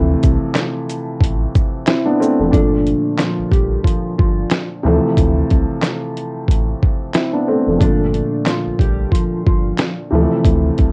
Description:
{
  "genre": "hip hop, boom-bap hip-hop",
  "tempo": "91 BPM",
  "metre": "4/4",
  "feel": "swing 57% on 16ths",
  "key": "G dorian",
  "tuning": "A4 = 440 Hz",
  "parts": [
    { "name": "dark concert grand piano", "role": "accompaniment", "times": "0.0-10.9 s", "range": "Bb2 to E4", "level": "-20 LUFS", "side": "equal", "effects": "cassette tape, high-pass filter, low-pass filter" },
    { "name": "round analog bass", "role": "bass", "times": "0.0-10.9 s", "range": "F1 to D2", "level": "-22 LUFS", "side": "equal", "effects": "none" },
    { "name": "dusty soul sampler-style drum kit", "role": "drums", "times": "0.2-10.9 s", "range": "handclaps, hi-hat, kick drum, shaker, snare drum", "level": "-19 LUFS", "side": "equal", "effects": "cassette tape" },
    { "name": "mellow electric guitar", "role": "melody", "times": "2.5-10.0 s", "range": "F3 to D5", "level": "-24 LUFS", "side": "equal", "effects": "lush chorus, high-pass filter, low-pass filter, cassette tape, tape echo" }
  ],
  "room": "light reverb",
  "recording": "home recording on cassette, nothing above 10.6 kHz",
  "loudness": "-17 LUFS",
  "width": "mono",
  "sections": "0.0-2.5 A section; 2.5-10.9 B section",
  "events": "none",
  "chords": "0.0 Dm9; 2.5 Gm9; 4.8 Dm9; 7.8 Gm9; 10.1 Dm9",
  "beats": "0.56 1.22 1.88 | 2.53 3.19 3.85 4.51 | 5.17 5.83 6.49 7.15 | 7.81 8.47 9.13 9.79 | 10.45"
}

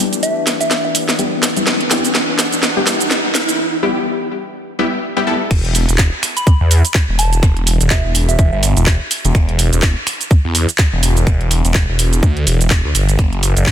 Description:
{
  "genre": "bass house",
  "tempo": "125 BPM",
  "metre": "4/4",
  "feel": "swing 58% on 16ths",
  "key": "E minor",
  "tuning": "A4 = 440 Hz",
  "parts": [
    { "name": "orchestra-hit-like synth stab", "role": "stabs", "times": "0.0-5.7 s", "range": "G3 to A4", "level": "-19 LUFS", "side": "left 3 dB", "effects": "built-in reverb, sidechain pumping, ping-pong delay" },
    { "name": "riser", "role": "sound effects", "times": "0.3-3.6 s", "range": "none", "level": "-24 LUFS", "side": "right 2 dB", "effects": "none" },
    { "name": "warbly tape-like pad", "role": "texture", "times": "0.0-3.6 s", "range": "E3 to F#5", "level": "-24 LUFS", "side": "left 2 dB", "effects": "chorus, built-in reverb, sidechain pumping" },
    { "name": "garage drum kit", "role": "drums", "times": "0.1-13.7 s", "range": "crash cymbal, finger snaps, handclaps, hi-hat, shaker, snare drum", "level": "-17 LUFS", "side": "right 1 dB", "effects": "soft clipping on snare, high-pass filter on snare, high-pass filter on hats, high-pass filter on perc, high-pass filter on cymbals, high-pass filter on room" },
    { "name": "soft synth bell", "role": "melody", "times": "0.2-0.9, 6.4-8.6 s", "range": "E5 to B5", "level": "-22 LUFS", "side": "right 1 dB", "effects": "chorus, phaser, ping-pong delay" },
    { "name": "phased detuned saw bass", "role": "bass", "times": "5.5-13.7 s", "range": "E1 to E2", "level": "-14 LUFS", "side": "equal", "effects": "phaser, tube saturation, sidechain pumping" },
    { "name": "electronic kick drum", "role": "drums", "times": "5.5-13.7 s", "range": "none", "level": "-13 LUFS", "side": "equal", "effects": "overdrive" }
  ],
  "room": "light reverb, digital ambience",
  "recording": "dense, heavily limited modern master",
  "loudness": "-12 LUFS",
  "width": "side -10 dB against mid",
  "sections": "0.0-5.5 A section; 5.5-13.7 B section",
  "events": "build-up 0.0-5.5; drum fill 0.0-3.6; filter sweep on synth stab 0.0-5.5; riser 0.3-3.6; break 3.6-5.5; drop 5.5-13.7",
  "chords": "0.0 Em; 5.5 N.C.",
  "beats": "0.23 0.71 1.19 | 1.67 2.15 2.63 3.11 | 3.59 4.07 4.55 5.03 | 5.51 5.99 6.47 6.95 | 7.43 7.91 8.39 8.87 | 9.35 9.83 10.31 10.79 | 11.27 11.75 12.23 12.71 | 13.19 13.67"
}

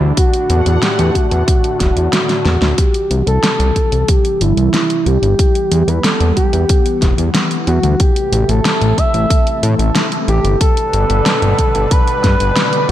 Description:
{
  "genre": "synthwave",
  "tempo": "92 BPM",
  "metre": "4/4",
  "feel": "straight",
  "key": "unclear",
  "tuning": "A4 = 440 Hz",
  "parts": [
    { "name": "lush unison pad", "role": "sustained chords", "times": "0.0-12.9 s", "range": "A2 to F#5", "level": "-21 LUFS", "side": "equal", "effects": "chorus, phaser, sidechain pumping" },
    { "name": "fat analog bass", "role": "bass", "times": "0.0-12.9 s", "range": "E1 to A2", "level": "-14 LUFS", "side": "equal", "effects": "sidechain pumping" },
    { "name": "expressive synth lead", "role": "melody", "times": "0.2-12.9 s", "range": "E4 to E5", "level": "-17 LUFS", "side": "equal", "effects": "chorus, tape echo" },
    { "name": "electronic kick drum", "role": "drums", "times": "0.2-12.4 s", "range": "none", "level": "-14 LUFS", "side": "equal", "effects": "none" },
    { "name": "pop drum kit", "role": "drums", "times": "0.2-12.9 s", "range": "hi-hat, snare drum", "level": "-19 LUFS", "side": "equal", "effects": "gated reverb" }
  ],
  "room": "light reverb, digital ambience",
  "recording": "none",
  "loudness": "-11 LUFS",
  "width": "side -12 dB against mid",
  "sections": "0.0-2.8 A section; 2.8-12.9 B section",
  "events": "drum fill 2.3-2.8; filter sweep on analog synth pad 2.8-12.9",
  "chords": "0.2 D/E; 2.8 C; 5.4 Emadd9; 8.0 Am; 10.6 G",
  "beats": "| 0.17 0.83 1.48 2.13 | 2.78 3.43 4.09 4.74 | 5.39 6.04 6.70 7.35 | 8.00 8.65 9.30 9.96 | 10.61 11.26 11.91 12.56"
}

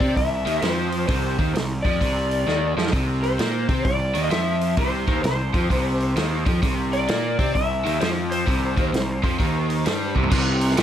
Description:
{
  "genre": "blues rock power trio and southern rock",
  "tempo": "130 BPM",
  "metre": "4/4",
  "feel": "swing 65% on 8ths",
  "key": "unclear",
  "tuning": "A4 = 441 Hz",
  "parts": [
    { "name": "overdriven slide guitar", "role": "melody", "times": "0.0-10.1 s", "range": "C5 to E5", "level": "-27 LUFS", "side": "left 2 dB", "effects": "plate reverb" },
    { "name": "overdriven electric guitar", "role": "riff", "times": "0.0-10.8 s", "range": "Bb2 to C4", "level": "-25 LUFS", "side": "right 1 dB", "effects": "none" },
    { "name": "fuzz picked electric bass", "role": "bass", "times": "0.0-10.8 s", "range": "Bb1 to C3", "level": "-25 LUFS", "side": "equal", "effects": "overdrive" },
    { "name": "vintage drum kit", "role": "drums", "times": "0.0-10.8 s", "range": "crash cymbal, hi-hat, kick drum, snare drum, toms", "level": "-25 LUFS", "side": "equal", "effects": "none" }
  ],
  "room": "light reverb",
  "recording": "none",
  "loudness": "-20 LUFS",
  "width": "side -10 dB against mid",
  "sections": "0.0-10.3 A section",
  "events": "drum fill 2.5-2.9, 10.1",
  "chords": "0.0 N.C.; 10.3 C5",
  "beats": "0.15 0.62 | 1.08 1.54 2.00 2.46 | 2.93 3.39 3.85 4.31 | 4.78 5.24 5.70 6.16 | 6.63 7.09 7.55 8.01 | 8.48 8.94 9.40 9.86 | 10.32 10.78"
}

